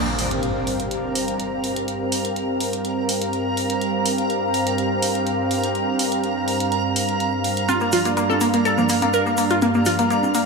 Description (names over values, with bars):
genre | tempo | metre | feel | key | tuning
progressive house | 124 BPM | 4/4 | straight | G minor | A4 = 442 Hz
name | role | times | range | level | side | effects
lush unison pad | sustained chords | 0.0-10.5 s | G2 to F5 | -22 LUFS | right 1 dB | chorus
impact | sound effects | 0.0-1.9 s | none | -30 LUFS | right 1 dB | none
backwards swelling texture | texture | 1.0-10.5 s | Bb5 | -27 LUFS | right 2 dB | built-in reverb
electronic hi-hat | drums | 0.2-10.4 s | none | -27 LUFS | right 1 dB | none
glassy wavetable pluck | arpeggios | 7.7-10.4 s | Bb3 to Bb4 | -20 LUFS | left 1 dB | chorus, dub echo
congas | percussion | 7.7-10.3 s | none | -28 LUFS | equal | none
egg shaker | percussion | 7.7-10.4 s | none | -34 LUFS | right 4 dB | none
room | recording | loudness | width
moderate lush hall reverb, RT60 2.2 s | none | -19 LUFS | side -3 dB against mid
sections
0.0-10.5 A section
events
impact 0.0-1.9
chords
0.0 Gm7; 7.7 Bb/G